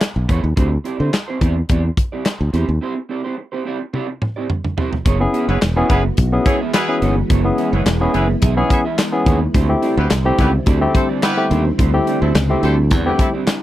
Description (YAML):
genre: early-eighties boogie funk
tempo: 107 BPM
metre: 4/4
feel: straight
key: unclear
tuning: A4 = 437 Hz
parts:
  - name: electric guitar at the edge of break-up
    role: riff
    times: 0.0-13.5 s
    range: B3 to E5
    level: -24 LUFS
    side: right 5 dB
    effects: lush chorus
  - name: modern studio drum kit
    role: drums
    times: 0.0-13.6 s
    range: handclaps, hi-hat, kick drum, snare drum, toms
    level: -18 LUFS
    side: equal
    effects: none
  - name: modern bright fingered electric bass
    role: bass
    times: 0.2-13.1 s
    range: E1 to D3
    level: -17 LUFS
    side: equal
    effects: none
  - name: soft string machine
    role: sustained chords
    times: 5.7-13.6 s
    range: D3 to F#4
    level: -24 LUFS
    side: equal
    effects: ensemble chorus
  - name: barky tine electric piano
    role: accompaniment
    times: 5.2-13.3 s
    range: A3 to G#4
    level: -18 LUFS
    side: left 2 dB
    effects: none
  - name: clear horn section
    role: second line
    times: 5.5-13.3 s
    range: A3 to E5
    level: -22 LUFS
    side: equal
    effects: none
room: little or no reverb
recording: dry, close 1970s-style studio recording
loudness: -15 LUFS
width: side -14 dB against mid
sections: 0.0-5.1 A section; 5.1-13.6 B section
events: break 2.8-5.1; drum fill 3.9-5.1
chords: 0.0 F#9sus4 (rootless); 0.6 D9sus4; 5.1 F#9sus4; 9.5 D9sus4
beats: 0.01 | 0.57 1.13 1.70 2.26 | 2.82 3.38 3.94 4.50 | 5.06 5.62 6.18 6.74 | 7.30 7.86 8.42 8.98 | 9.54 10.11 10.67 11.23 | 11.79 12.35 12.91 13.47